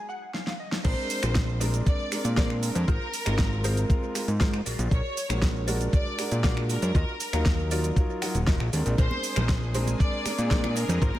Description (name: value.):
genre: nu-disco, nu disco.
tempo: 118 BPM.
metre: 4/4.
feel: straight.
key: Bb mixolydian.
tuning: A4 = 441 Hz.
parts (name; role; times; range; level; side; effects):
direct-recorded clean electric guitar; riff; 0.0-11.2 s; D4 to Gb5; -37 LUFS; left 1 dB; ensemble chorus, analog delay.
pop drum kit; drums; 0.3-11.1 s; crash cymbal, finger snaps, hi-hat, shaker, snare drum; -32 LUFS; right 1 dB; overdrive.
dark grand piano; accompaniment; 0.8-11.0 s; Gb3 to F5; -32 LUFS; right 1 dB; vintage 12-bit sampler grit, sidechain pumping, analog delay.
fat analog bass; bass; 0.8-11.1 s; Eb1 to Bb2; -27 LUFS; equal; tube saturation.
electronic kick drum; drums; 0.8-11.1 s; none; -24 LUFS; equal; none.
warm symphonic violin section; melody; 0.9-11.2 s; Bb4 to D5; -34 LUFS; equal; analog delay.
lush unison pad; sustained chords; 9.0-11.2 s; Ab3 to Ab4; -41 LUFS; equal; chorus, sidechain pumping.
congas and bongos; percussion; 9.1-11.2 s; none; -35 LUFS; right 4 dB; none.
room: little or no reverb.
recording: echo-heavy mix.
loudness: -23 LUFS.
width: side -14 dB against mid.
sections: 0.8-11.2 A section.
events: break 0.0-0.8; clean electric guitar fill 0.0-0.8, 8.0-9.0; drum fill 0.3-0.8; drop 0.8-11.2.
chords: 0.0 Ebmadd9; 0.8 Bb9; 2.9 Ab69; 4.7 Bb7alt; 7.0 Ebmadd9; 9.0 Bb9.